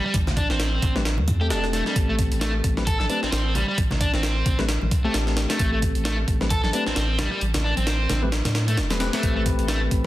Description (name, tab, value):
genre	breakbeat, breaks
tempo	132 BPM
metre	4/4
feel	swing 57% on 16ths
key	A minor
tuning	A4 = 440 Hz
part	crunchy overdriven guitar	riff	0.0-9.8 s	G3 to A4	-27 LUFS	equal	tube saturation, digital delay
part	saturated sub bass	bass	0.1-10.1 s	E1 to A2	-25 LUFS	equal	none
part	breakbeat sampler-style drum kit	drums	0.1-10.0 s	hi-hat, kick drum, snare drum	-24 LUFS	equal	none
part	congas	percussion	0.3-10.1 s	none	-33 LUFS	left 2 dB	none
part	mellow tine electric piano	stabs	1.0-10.1 s	A3 to B4	-29 LUFS	left 3 dB	analog chorus, digital delay
room	light reverb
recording	dense, heavily limited modern master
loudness	-20 LUFS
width	side -15 dB against mid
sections	0.0-10.1 A section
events	none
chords	0.0 Am9